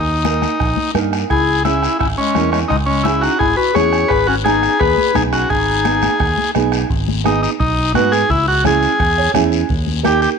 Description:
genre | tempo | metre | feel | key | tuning
latin, cumbia | 171 BPM | 4/4 | straight | G# minor | A4 = 440 Hz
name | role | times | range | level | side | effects
overdriven combo organ | melody | 0.0-10.3 s | C#4 to C#5 | -17 LUFS | equal | slapback echo
fingered electric bass | bass | 0.0-10.3 s | G#1 to G#2 | -20 LUFS | equal | none
bombo | percussion | 0.2-10.2 s | none | -23 LUFS | right 4 dB | none
congas | percussion | 0.2-10.2 s | none | -24 LUFS | left 12 dB | none
guiro | percussion | 0.2-10.4 s | none | -29 LUFS | left 17 dB | none
dark upright piano | accompaniment | 0.3-10.3 s | A#3 to G#5 | -21 LUFS | right 14 dB | none
mellow clarinet | second line | 1.3-6.5 s | G#3 to G#4 | -20 LUFS | left 12 dB | none
room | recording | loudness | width
light reverb, small room ambience | 1960s-style stereo with parts hard left and right | -13 LUFS | side -6 dB against mid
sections
0.0-6.9 A section; 6.9-10.4 B section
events
upright piano fill 9.0-9.7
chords
0.0 D#; 1.3 C#m; 4.1 G#m; 8.3 C#m; 9.7 D#

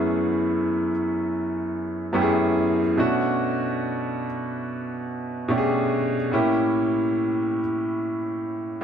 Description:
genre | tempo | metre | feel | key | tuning
soul | 72 BPM | 4/4 | swing 58% on 16ths | F# minor | A4 = 440 Hz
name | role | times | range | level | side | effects
clear baby grand piano | solo | 0.0-8.8 s | F#2 to G#4 | -22 LUFS | equal | slapback echo
room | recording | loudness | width
moderate echo chamber reverb, RT60 1.5 s | none | -22 LUFS | side -8 dB against mid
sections
0.0-8.8 A section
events
none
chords
0.0 F#m11; 3.0 Bm9; 6.3 A7b9

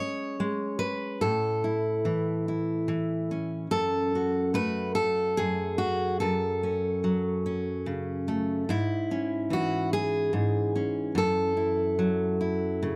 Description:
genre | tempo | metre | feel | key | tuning
folk, solo fingerstyle acoustic guitar | 48 BPM (dotted quarters) | 6/8 | straight | F# minor | A4 = 440 Hz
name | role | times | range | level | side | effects
fingerpicked steel-string acoustic guitar | solo | 0.0-13.0 s | F#2 to C#5 | -28 LUFS | equal | none
room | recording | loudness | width
moderate studio reverb, RT60 0.7 s | dry, close 1970s-style studio recording | -28 LUFS | mono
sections
0.0-13.0 A section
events
none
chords
0.0 C#5/G#; 1.2 A; 3.7 F#m; 8.7 C#m/G#; 11.2 F#m7

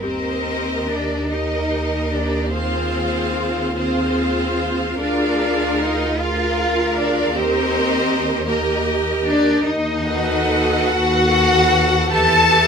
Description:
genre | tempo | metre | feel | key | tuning
classical, slow romantic movement for string orchestra | 46-54 BPM (dotted quarters) | 6/8 | rubato | Eb major | A4 = 440 Hz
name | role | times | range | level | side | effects
warm studio violin section | melody | 0.0-12.7 s | Bb4 to A5 | -23 LUFS | left 2 dB | none
rich studio violin section | second line | 0.0-12.7 s | Bb4 to F#5 | -24 LUFS | equal | none
rich studio viola section | accompaniment | 0.0-12.7 s | F4 to A4 | -23 LUFS | right 1 dB | none
rich studio cello section | bass | 0.0-12.7 s | Bb3 to A4 | -21 LUFS | left 1 dB | none
rich studio double bass section | bass | 0.0-12.7 s | D2 to E2 | -25 LUFS | right 1 dB | none
room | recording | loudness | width
moderate studio reverb, RT60 0.7 s | minimal, uncompressed stereo recording | -16 LUFS | side -6 dB against mid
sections
0.0-12.7 A section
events
none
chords
0.0 Eb; 2.5 Fm7/Eb; 5.0 Bb7/D; 7.3 Eb; 9.7 B7/D#; 12.1 Em

